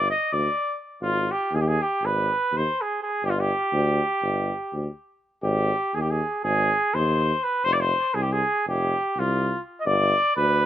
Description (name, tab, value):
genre	balkan folk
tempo	245 BPM (eighths)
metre	9/8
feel	straight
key	unclear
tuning	A4 = 440 Hz
part	mellow cornet	melody	0.0-10.7 s	F4 to Eb5	-23 LUFS	equal	slapback echo
part	warm tuba	bass	0.0-10.6 s	F1 to Eb2	-25 LUFS	equal	none
room	little or no reverb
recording	recorded outdoors, with no room sound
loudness	-22 LUFS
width	side -11 dB against mid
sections	0.0-5.4 A section; 5.4-10.7 B section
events	none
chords	0.0 G5; 1.0 Ab5; 3.2 G5; 5.4 Ab; 7.6 F5; 9.9 G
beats	0.04 0.29 0.53 0.78 | 1.02 1.27 1.51 1.76 2.00 2.25 2.49 2.74 2.98 | 3.23 3.48 3.72 3.97 4.21 4.46 4.70 4.95 5.19 | 5.44 5.68 5.93 6.17 6.42 6.67 6.91 7.16 7.40 | 7.65 7.89 8.14 8.38 8.63 8.87 9.12 9.36 9.61 | 9.85 10.10 10.34 10.59